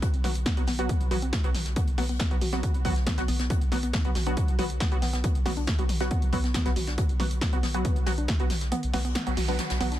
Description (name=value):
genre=driving peak-time techno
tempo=138 BPM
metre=4/4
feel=straight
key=B minor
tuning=A4 = 440 Hz
part: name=saturated sub bass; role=bass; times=0.0-10.0 s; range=B1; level=-31 LUFS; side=equal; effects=overdrive, sidechain pumping, low-pass filter
part: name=electronic kick drum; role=drums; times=0.0-8.4 s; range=none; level=-26 LUFS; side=equal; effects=none
part: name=punchy analog drum machine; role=drums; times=0.0-10.0 s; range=hi-hat, snare drum, toms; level=-33 LUFS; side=left 1 dB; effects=sidechain pumping on hats, sidechain pumping on toms
part: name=soft brush drum kit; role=drums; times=0.0-10.0 s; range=hi-hat, snare drum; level=-40 LUFS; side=left 2 dB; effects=sidechain pumping on hats, high-pass filter on hats, soft clipping on snare, high-pass filter on snare, high-pass filter on room
part: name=rave stab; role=stabs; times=0.2-9.9 s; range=F#3 to F#4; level=-33 LUFS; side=right 1 dB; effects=chorus, built-in reverb, sidechain pumping, digital delay
part: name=woody wave-folded pluck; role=riff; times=0.5-10.0 s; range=B3 to F#4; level=-35 LUFS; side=equal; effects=chorus, cassette tape, sidechain pumping, digital delay
part: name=noise sweep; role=sound effects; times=8.9-10.0 s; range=none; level=-39 LUFS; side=right 4 dB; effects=none
room=little or no reverb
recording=dense, heavily limited modern master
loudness=-24 LUFS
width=side -13 dB against mid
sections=0.0-10.0 A section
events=kick drops out 8.7-10.0; noise sweep 8.9-10.0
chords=0.0 B5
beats=| 0.02 0.46 0.89 1.33 | 1.76 2.20 2.63 3.07 | 3.50 3.94 4.37 4.81 | 5.24 5.67 6.11 6.54 | 6.98 7.41 7.85 8.28 | 8.72 9.15 9.59